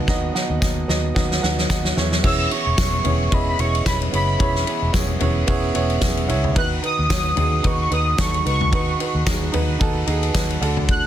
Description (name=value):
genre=piano-driven pop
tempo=111 BPM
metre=4/4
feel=swing 56% on 16ths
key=E major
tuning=A4 = 438 Hz
part: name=dark upright piano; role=accompaniment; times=0.0-11.1 s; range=D3 to F#5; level=-24 LUFS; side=right 4 dB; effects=none
part: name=vintage muted fingered electric bass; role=bass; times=0.0-11.1 s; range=E1 to E2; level=-23 LUFS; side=equal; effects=none
part: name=loose indie drum kit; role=drums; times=0.1-11.0 s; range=crash cymbal, kick drum, ride cymbal, snare drum, toms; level=-22 LUFS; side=left 1 dB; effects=none
part: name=tambourine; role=percussion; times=0.6-10.5 s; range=none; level=-35 LUFS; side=left 11 dB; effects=none
part: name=warm velvety synth lead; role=melody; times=2.3-11.1 s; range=B5 to F#6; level=-24 LUFS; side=equal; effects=chorus
room=small room ambience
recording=dense, heavily limited modern master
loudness=-18 LUFS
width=side -11 dB against mid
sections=0.0-2.2 A section; 2.2-11.1 B section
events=drum fill 0.1-2.2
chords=0.0 B; 2.0 E6; 6.6 B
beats=| 0.08 0.62 1.16 1.70 | 2.24 2.78 3.32 3.86 | 4.40 4.94 5.48 6.02 | 6.56 7.10 7.64 8.18 | 8.72 9.26 9.80 10.35 | 10.88